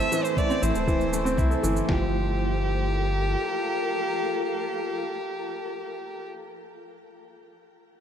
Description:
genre	piano and strings electronica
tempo	119 BPM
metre	4/4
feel	straight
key	G dorian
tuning	A4 = 436 Hz
part	rich violin	melody	0.0-6.3 s	G4 to E5	-30 LUFS	equal	tape echo, shimmer reverb
part	granular cloud pad	sustained chords	0.0-6.3 s	A3 to C5	-31 LUFS	equal	built-in reverb, sidechain pumping, shimmer reverb
part	warm grand piano	riff	0.0-8.0 s	E3 to A4	-28 LUFS	right 1 dB	tape echo, shimmer reverb
part	round analog bass	bass	0.0-3.4 s	D1 to C2	-27 LUFS	equal	sidechain pumping
part	shaker	drums	0.0-1.9 s	none	-37 LUFS	right 3 dB	none
part	lo-fi sampler-style drum kit	drums	0.4-2.0 s	kick drum, snare drum	-26 LUFS	equal	none
room	moderate concert hall reverb, RT60 1.8 s, digital ambience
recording	none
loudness	-24 LUFS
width	side -8 dB against mid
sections	0.0-1.9 A section; 1.9-5.9 B section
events	drop 0.0-1.9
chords	0.0 Am; 1.9 Gm9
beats	0.37 0.88 1.38 | 1.89 2.39 2.89 3.40 | 3.90 4.41 4.91 5.42

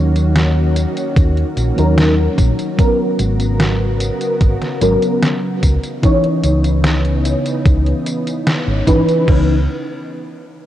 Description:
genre	vaporwave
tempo	74 BPM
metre	4/4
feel	straight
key	C# dorian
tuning	A4 = 440 Hz
part	mellow FM electric piano	accompaniment	0.0-9.6 s	E3 to C#5	-18 LUFS	equal	ensemble chorus, analog delay
part	soft string machine	sustained chords	0.0-9.7 s	C#3 to A#4	-23 LUFS	equal	ensemble chorus
part	hollow-body short-scale fingered electric bass	bass	0.0-9.7 s	G#1 to D#2	-16 LUFS	equal	none
part	detuned 8-bit digital drum machine	drums	0.2-9.4 s	crash cymbal, hi-hat, snare drum, tambourine	-21 LUFS	equal	overdrive, vintage 12-bit sampler grit
part	electronic kick drum	drums	1.2-9.4 s	none	-13 LUFS	equal	overdrive, vintage 12-bit sampler grit
room	light reverb, digital ambience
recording	worn, warbling old tape, cassette tape, warbly pitch drift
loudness	-13 LUFS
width	side -12 dB against mid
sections	0.0-9.3 A section; 9.3-10.7 B section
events	band accent 8.5-8.9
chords	0.0 D#m7; 2.8 G#m11; 5.6 C#m9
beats	0.36 1.17 1.98 | 2.79 3.60 4.41 5.22 | 6.03 6.84 7.65 8.46 | 9.28

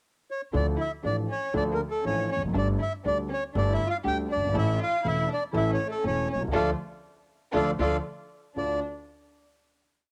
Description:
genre	tango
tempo	120 BPM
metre	4/4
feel	rubato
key	D harmonic minor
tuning	A4 = 435 Hz
part	bandoneon	melody	0.3-8.8 s	A4 to G5	-31 LUFS	equal	cassette tape
part	warm studio violin section	second line	0.5-8.8 s	A3 to G4	-36 LUFS	equal	none
part	warm concert grand piano	accompaniment	0.5-8.8 s	E1 to A4	-32 LUFS	equal	none
part	upright bass	bass	0.5-8.8 s	E1 to D2	-34 LUFS	equal	none
room	light reverb, small room ambience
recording	home recording on cassette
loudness	-28 LUFS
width	mono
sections	0.0-0.5 pickup bar; 0.5-8.6 A section; 8.6-10.1 final chord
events	band accent 6.5-8.6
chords	0.0 N.C.; 0.5 Dm; 2.5 Gsus2; 4.5 A; 6.5 Dm; 8.0 N.C.; 8.6 Dm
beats	0.03 | 0.53 1.04 1.54 2.05 | 2.55 3.05 3.55 4.05 | 4.55 5.04 5.54 6.04 | 6.53 7.03 7.54 8.05 | 8.55

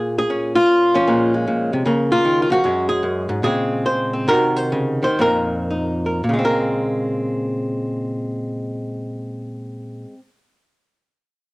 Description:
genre	solo jazz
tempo	107-153 BPM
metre	4/4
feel	swing 66% on 8ths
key	Bb minor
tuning	A4 = 439 Hz
part	archtop guitar, miked and amplified	solo	0.0-10.2 s	F2 to C5	-17 LUFS	equal	cassette tape
room	moderate studio reverb, RT60 0.6 s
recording	home recording on cassette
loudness	-17 LUFS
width	side -22 dB against mid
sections	0.0-2.6 A section; 2.6-6.2 B section; 6.2-10.7 C section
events	slowing down 2.6-6.2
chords	0.0 Bbm7; 1.8 Db69; 2.6 Gbsus2; 3.4 Bbm9; 4.3 Cdim; 5.2 F7sus4; 6.2 Bbm9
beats	0.28 0.67 | 1.06 1.45 1.85 2.24 | 2.63 3.02 3.42 3.84 | 4.26 4.71 5.18 5.68 | 6.22 6.78 7.34 7.90 | 8.46 9.02 9.58 10.14

